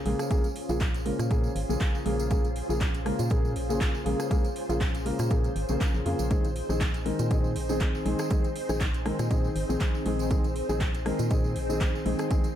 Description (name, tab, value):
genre	deep house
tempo	120 BPM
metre	4/4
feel	swing 55% on 16ths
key	Bb minor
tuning	A4 = 440 Hz
part	soft string machine	sustained chords	0.0-12.6 s	C4 to C5	-35 LUFS	equal	phaser, ensemble chorus, sidechain pumping
part	felt-muted upright piano	stabs	0.0-12.4 s	Db3 to Bb4	-31 LUFS	left 2 dB	ping-pong delay
part	warbly dusty pluck	arpeggios	0.1-12.4 s	Ab3 to Eb5	-36 LUFS	equal	ensemble chorus, sidechain pumping, digital delay
part	organ-like FM bass	bass	0.1-12.1 s	Ab1 to Bb2	-31 LUFS	equal	sidechain pumping
part	house drum kit	drums	0.1-12.5 s	handclaps, hi-hat, rim click	-37 LUFS	equal	studio reverb
part	tambourine	percussion	0.2-12.5 s	none	-45 LUFS	right 6 dB	none
part	electronic kick drum	drums	0.3-12.4 s	none	-26 LUFS	equal	overdrive, studio reverb
room	light reverb, digital ambience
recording	none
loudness	-25 LUFS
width	side -11 dB against mid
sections	0.0-12.6 A section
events	none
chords	0.0 Bbm7; 6.3 Ab